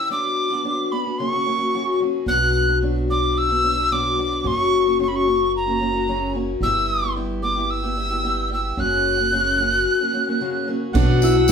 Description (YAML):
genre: acoustic folk duo or small band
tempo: 111 BPM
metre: 4/4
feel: straight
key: unclear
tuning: A4 = 440 Hz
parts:
  - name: breathy bright tin whistle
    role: melody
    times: 0.0-11.5 s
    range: A#5 to F#6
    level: -21 LUFS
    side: right 1 dB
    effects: none
  - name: picked steel-string acoustic guitar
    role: accompaniment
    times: 0.0-11.5 s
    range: F#2 to G4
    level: -22 LUFS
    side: left 4 dB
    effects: none
  - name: upright bass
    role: bass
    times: 2.3-11.5 s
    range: F#1 to B1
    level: -25 LUFS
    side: right 1 dB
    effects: none
  - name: warm harmonica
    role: second line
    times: 10.9-11.5 s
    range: F#5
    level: -26 LUFS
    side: right 4 dB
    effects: none
  - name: natural country drum kit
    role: drums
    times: 10.9-11.5 s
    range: crash cymbal, kick drum, snare drum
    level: -21 LUFS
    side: right 1 dB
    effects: none
  - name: tambourine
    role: percussion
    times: 10.9-11.5 s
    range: none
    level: -28 LUFS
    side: left 3 dB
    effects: none
  - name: bright upright piano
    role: arpeggios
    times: 11.0-11.5 s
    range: D4 to E4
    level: -22 LUFS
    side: right 7 dB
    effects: none
room: moderate large studio reverb, RT60 0.9 s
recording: band playing live in one room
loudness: -18 LUFS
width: side -6 dB against mid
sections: 0.0-10.9 A section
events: break 9.9-10.9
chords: 0.1 Bm/F#; 1.2 F#; 2.3 Bm; 4.4 F#; 6.6 Em/G; 8.8 F#; 10.9 Bm